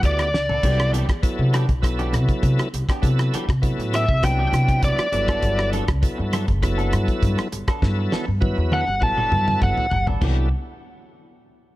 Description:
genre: electric jazz fusion.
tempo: 100 BPM.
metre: 4/4.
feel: straight.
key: C lydian.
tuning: A4 = 437 Hz.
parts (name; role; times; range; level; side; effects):
bright tonewheel organ; accompaniment; 0.0-10.5 s; F#3 to B4; -28 LUFS; equal; slow rotary speaker, overdrive, chorus vibrato.
upright bass; bass; 0.0-10.5 s; F#1 to C3; -22 LUFS; equal; none.
damped 70s drum kit; drums; 0.0-10.4 s; crash cymbal, hi-hat, kick drum, rim click, snare drum, toms; -23 LUFS; equal; none.
biting lead guitar; melody; 0.1-10.0 s; D5 to A5; -23 LUFS; equal; overdrive.
clean electric guitar; stabs; 0.2-10.5 s; E3 to A4; -33 LUFS; right 1 dB; lush chorus.
room: little or no reverb.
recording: none.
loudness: -18 LUFS.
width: side -17 dB against mid.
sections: 0.0-10.2 A section; 10.2-11.8 B section.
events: lead electric guitar solo 0.0-10.2; drum fill 0.3-0.6, 7.8-10.2.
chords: 0.0 Gmaj9; 0.6 Cmaj9; 5.1 Gmaj9; 10.2 Cmaj9.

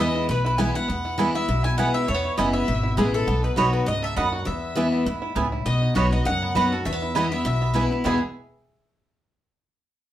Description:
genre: bluegrass.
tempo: 201 BPM.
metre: 4/4.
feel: swing 54% on 8ths.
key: E major.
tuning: A4 = 440 Hz.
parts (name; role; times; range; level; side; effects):
bluegrass banjo; melody; 0.0-8.2 s; G#3 to A4; -31 LUFS; right 3 dB; none.
mandolin; melody; 0.0-8.2 s; G#4 to G#5; -29 LUFS; left 1 dB; none.
clear fiddle; second line; 0.0-8.2 s; G#4 to G#5; -33 LUFS; left 4 dB; none.
picked steel-string acoustic guitar; accompaniment; 0.0-8.2 s; E2 to F#4; -25 LUFS; left 2 dB; none.
mandolin; stabs; 0.0-8.2 s; B3 to B5; -26 LUFS; right 5 dB; none.
upright bass; bass; 0.0-8.2 s; F#1 to E2; -26 LUFS; equal; none.
room: wet studio reverb, RT60 0.5 s.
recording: heard from further back in the room.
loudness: -20 LUFS.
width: side -12 dB against mid.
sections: 0.0-5.7 A section; 5.7-8.1 B section; 8.1-9.2 C section.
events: none.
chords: 0.0 E; 3.3 B; 4.5 E; 5.7 B; 6.9 E.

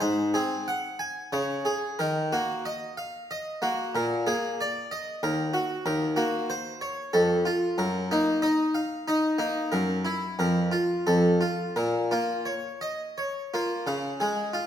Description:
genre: classical, baroque-style suite movement for harpsichord.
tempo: 92 BPM.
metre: 3/4.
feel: rubato.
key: Bb minor from 5.9 s.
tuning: A4 = 440 Hz.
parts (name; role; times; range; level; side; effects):
harpsichord; solo; 0.0-14.7 s; Eb2 to Ab5; -25 LUFS; equal; none.
room: wet recital hall reverb, RT60 1.5 s.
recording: none.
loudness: -25 LUFS.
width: side -10 dB against mid.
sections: 0.0-13.9 A section.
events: none.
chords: 0.0 Ab7; 1.3 Db5; 2.0 Ebm; 3.9 Bb7; 5.2 Ebm; 5.9 Cm7b5/Eb; 7.2 F; 7.8 Ebm/Gb; 9.7 Gb7; 10.4 Bb5/F; 11.1 F; 11.8 Bbm; 13.9 Db.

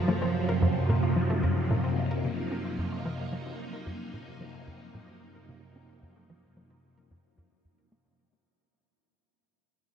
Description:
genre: ambient, sequencer-driven space music.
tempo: 111 BPM.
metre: 4/4.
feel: straight.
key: unclear.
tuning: A4 = 440 Hz.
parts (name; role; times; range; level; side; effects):
phased string machine; sustained chords; 0.0-8.2 s; Gb2 to Eb4; -29 LUFS; right 1 dB; ensemble chorus, phaser.
wide unison pluck; arpeggios; 0.1-8.2 s; F3 to Bb4; -39 LUFS; left 2 dB; auto-pan, cassette tape, ping-pong delay.
tight sequencer bass; riff; 0.1-8.0 s; Gb2 to Db4; -30 LUFS; equal; analog chorus, vintage 12-bit sampler grit, ping-pong delay.
room: moderate huge ambient reverb, RT60 8.0 s.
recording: dreamy mix soaked in reverb.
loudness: -26 LUFS.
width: side -8 dB against mid.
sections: 0.0-8.2 A section.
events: fade-out on synth arpeggio sound 0.0-8.2; fade-out 0.0-8.2; filter sweep on analog synth bass 0.0-8.2.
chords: 0.0 Gb6.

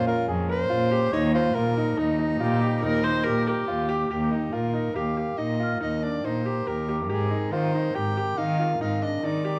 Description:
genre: contemporary instrumental, chamber music in an uneven meter.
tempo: 141 BPM.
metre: 7/4.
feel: straight.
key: Eb mixolydian, Eb major from 4.1 s.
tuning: A4 = 440 Hz.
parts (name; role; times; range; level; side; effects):
clear soprano saxophone; melody; 0.0-9.6 s; Eb4 to G5; -32 LUFS; equal; none.
mellow French horn section; sustained chords; 0.0-9.6 s; Eb3 to Bb4; -38 LUFS; equal; none.
clear concert grand piano; arpeggios; 0.0-9.6 s; D4 to Bb4; -31 LUFS; equal; none.
warm cello; bass; 0.0-9.6 s; Eb2 to Eb3; -29 LUFS; equal; none.
warm viola; second line; 2.4-4.1 s; G4 to C5; -30 LUFS; equal; none.
celesta; texture; 4.2-6.3 s; F6 to G6; -40 LUFS; equal; none.
room: moderate recital hall reverb, RT60 1.6 s.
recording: none.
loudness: -25 LUFS.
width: mono.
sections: 0.0-4.1 A section; 4.1-9.6 B section.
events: none.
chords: 0.0 Bbm7; 1.1 Ebadd9; 4.1 Eb; 7.1 Abmaj7.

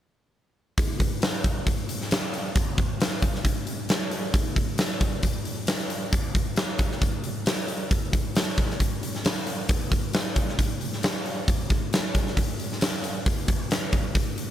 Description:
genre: rock.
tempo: 135 BPM.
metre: 4/4.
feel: straight.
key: none.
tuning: none.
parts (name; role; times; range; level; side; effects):
huge arena drum kit; drums; 0.8-14.5 s; hi-hat, kick drum, snare drum; -24 LUFS; equal; none.
room: light reverb.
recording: none.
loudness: -24 LUFS.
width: side -11 dB against mid.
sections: 0.8-14.5 A section.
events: none.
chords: none.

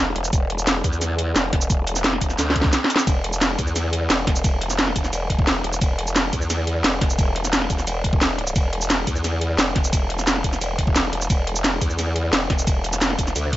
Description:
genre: dark technical drum and bass.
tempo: 175 BPM.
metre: 4/4.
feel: straight.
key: unclear.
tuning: A4 = 440 Hz.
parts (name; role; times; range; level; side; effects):
growl bass; bass; 0.0-13.6 s; E1 to E2; -24 LUFS; equal; chorus, tube saturation, sidechain pumping.
drum and bass drum kit; drums; 0.2-13.6 s; hi-hat, ride cymbal, shaker, snare drum; -22 LUFS; equal; none.
electronic kick drum; drums; 0.3-13.6 s; none; -21 LUFS; equal; none.
room: little or no reverb.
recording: nothing above 7.8 kHz.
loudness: -18 LUFS.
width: side -15 dB against mid.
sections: 0.0-13.6 A section.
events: drum fill 2.4-3.1.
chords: none.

